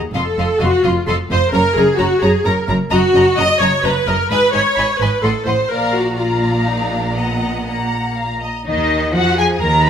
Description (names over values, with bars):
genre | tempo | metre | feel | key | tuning
quick classical-period movement for string orchestra | 117-131 BPM | 3/4 | rubato | Eb minor | A4 = 440 Hz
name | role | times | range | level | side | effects
clear symphonic violin section | second line | 0.1-9.9 s | Eb4 to Bb5 | -26 LUFS | left 1 dB | none
clear studio viola section | accompaniment | 0.1-9.9 s | Bb3 to Eb5 | -16 LUFS | equal | none
clear symphonic double bass section | bass | 0.1-9.9 s | F1 to F2 | -22 LUFS | right 2 dB | none
dark symphonic violin section | melody | 0.2-9.9 s | Eb5 to C6 | -21 LUFS | left 2 dB | none
rich symphonic cello section | bass | 0.2-9.9 s | F2 to F3 | -21 LUFS | right 1 dB | none
room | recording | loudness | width
moderate large studio reverb, RT60 1.4 s | none | -14 LUFS | side -8 dB against mid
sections
0.0-8.7 A section; 8.7-9.9 B section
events
none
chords
0.2 F7; 1.5 Gb; 2.9 Ebm/Gb; 4.3 Abm; 5.2 Adim7; 5.7 Bb; 7.2 Ebm/Bb; 8.2 Bb5; 8.7 Ab7sus2/Eb